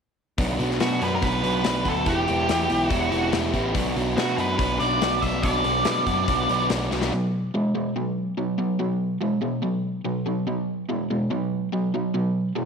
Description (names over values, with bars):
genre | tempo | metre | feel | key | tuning
blues rock power trio and southern rock | 143 BPM | 4/4 | straight | B minor | A4 = 442 Hz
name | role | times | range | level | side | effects
crunchy overdriven guitar | riff | 0.4-12.7 s | B2 to G4 | -24 LUFS | equal | none
growling picked electric bass | bass | 0.4-7.1 s | E1 to B2 | -28 LUFS | equal | overdrive
big rock drum kit | drums | 0.4-7.1 s | hi-hat, kick drum, snare drum | -29 LUFS | left 3 dB | none
octave-fuzz lead guitar | melody | 0.8-6.7 s | F#4 to E5 | -25 LUFS | right 2 dB | distortion
room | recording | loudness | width
moderate echo chamber reverb, RT60 1.4 s, small room ambience | 1960s-style stereo | -22 LUFS | side -6 dB against mid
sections
0.4-7.1 A section; 7.1-12.7 B section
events
drum fill 6.9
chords
0.4 Bm; 2.1 Em; 3.8 Bm; 7.1 B5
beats
| 0.39 0.81 1.23 1.65 | 2.07 2.49 2.91 3.33 | 3.75 4.17 4.59 5.02 | 5.44 5.86 6.28 6.70 | 7.12 7.54 7.95 8.37 | 8.79 9.21 9.63 10.05 | 10.46 10.88 11.30 11.72 | 12.14 12.55